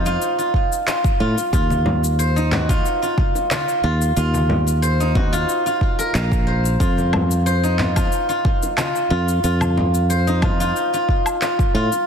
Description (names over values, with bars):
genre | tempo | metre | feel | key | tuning
organic downtempo | 91 BPM | 4/4 | straight | unclear | A4 = 441 Hz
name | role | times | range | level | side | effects
steel-string zither | arpeggios | 0.0-12.1 s | Eb4 to F5 | -21 LUFS | equal | ping-pong delay
fretless electric bass | bass | 0.0-11.9 s | Bb1 to A2 | -19 LUFS | equal | tube saturation, sidechain pumping
electronic cabasa, handclaps and woodblock | drums | 0.1-12.0 s | none | -27 LUFS | left 1 dB | small room ambience
electronic kick drum | drums | 0.5-11.7 s | none | -20 LUFS | equal | small room ambience
bongos and congas | percussion | 1.4-12.0 s | none | -28 LUFS | left 2 dB | none
room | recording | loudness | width
light reverb, small room ambience | dense, heavily limited modern master | -16 LUFS | side -7 dB against mid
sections
0.0-12.1 A section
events
none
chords
0.0 F5; 1.5 Eb5; 6.8 F5